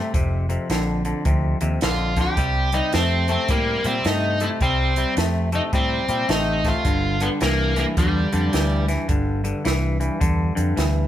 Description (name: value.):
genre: electric blues shuffle.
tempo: 107 BPM.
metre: 4/4.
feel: swing 63% on 8ths.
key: C mixolydian.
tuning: A4 = 440 Hz.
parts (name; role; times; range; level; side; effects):
twangy electric guitar; riff; 0.0-11.1 s; F2 to A3; -25 LUFS; left 2 dB; none.
vintage muted fingered electric bass; bass; 0.1-11.1 s; F1 to Bb2; -23 LUFS; equal; none.
compact cocktail drum kit; drums; 0.1-10.9 s; hi-hat, kick drum, snare drum; -25 LUFS; equal; none.
overdriven electric guitar; melody; 1.8-8.9 s; G3 to G4; -23 LUFS; equal; none.
room: moderate stone room reverb, RT60 1.4 s.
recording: band playing live in one room.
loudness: -19 LUFS.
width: side -12 dB against mid.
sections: 0.0-11.1 A section.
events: none.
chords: 0.1 F5; 2.4 C5; 6.8 G5.